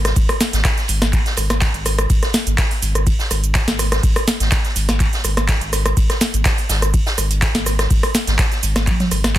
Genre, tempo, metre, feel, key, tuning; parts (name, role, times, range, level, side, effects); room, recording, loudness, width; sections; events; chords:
acid house; 124 BPM; 4/4; straight; A4 = 440 Hz
round analog bass; bass; 0.0-9.4 s; G#1; -20 LUFS; equal; sidechain pumping
booming analog drum machine; drums; 0.0-9.4 s; handclaps, hi-hat, ride cymbal, rim click, shaker, snare drum, toms; -19 LUFS; equal; overdrive
vintage drum kit; drums; 0.1-9.4 s; hi-hat, snare drum; -28 LUFS; right 2 dB; sidechain pumping on hats, high-pass filter on hats, high-pass filter on snare, high-pass filter on room
electronic kick drum; drums; 0.2-9.4 s; -18 LUFS; equal; overdrive
little or no reverb; dense, heavily limited modern master; -15 LUFS; side -14 dB against mid
0.0-9.4 A section
drum fill 8.9-9.4